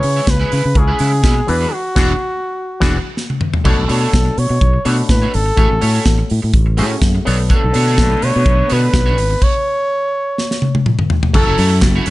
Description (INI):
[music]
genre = disco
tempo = 125 BPM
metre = 4/4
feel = straight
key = unclear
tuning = A4 = 442 Hz
[part]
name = warm flugelhorn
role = melody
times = 0.0-11.8 s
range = F#4 to C#5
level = -19 LUFS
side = equal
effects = none
[part]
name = auto-wah clav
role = accompaniment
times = 0.0-12.1 s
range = B2 to E5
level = -23 LUFS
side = left 4 dB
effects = none
[part]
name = electric guitar at the edge of break-up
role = accompaniment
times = 0.0-12.1 s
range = G#3 to C#5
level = -25 LUFS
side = right 4 dB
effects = analog chorus
[part]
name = fingered electric bass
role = bass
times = 0.0-12.1 s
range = E1 to C#3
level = -16 LUFS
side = equal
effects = none
[part]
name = modern studio drum kit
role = drums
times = 0.0-12.1 s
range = crash cymbal, hi-hat, kick drum, snare drum, toms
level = -16 LUFS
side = equal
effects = none
[part]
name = rich chamber string section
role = sustained chords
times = 7.5-12.1 s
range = D3 to A4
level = -24 LUFS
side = right 1 dB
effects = none
[part]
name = group handclap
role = percussion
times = 11.8-11.9 s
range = none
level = -29 LUFS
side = right 3 dB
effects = none
[sound]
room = studio reverb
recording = nothing above 10.9 kHz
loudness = -12 LUFS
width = side -18 dB against mid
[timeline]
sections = 0.0-3.6 A section; 3.6-11.3 B section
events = band accent 1.7-3.6; drum fill 3.2-3.6, 10.4-11.3; stop 9.4-11.3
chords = 0.0 C#m7; 1.5 E9; 3.6 Bm9; 5.6 F#m7/A; 7.3 Bm9; 9.4 N.C.; 11.3 F#m7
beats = 0.27 0.75 1.24 | 1.72 2.20 2.69 3.17 | 3.65 4.13 4.61 5.09 | 5.58 6.06 6.54 7.02 | 7.50 7.98 8.46 8.94 | 9.42 9.90 10.38 10.86 | 11.34 11.82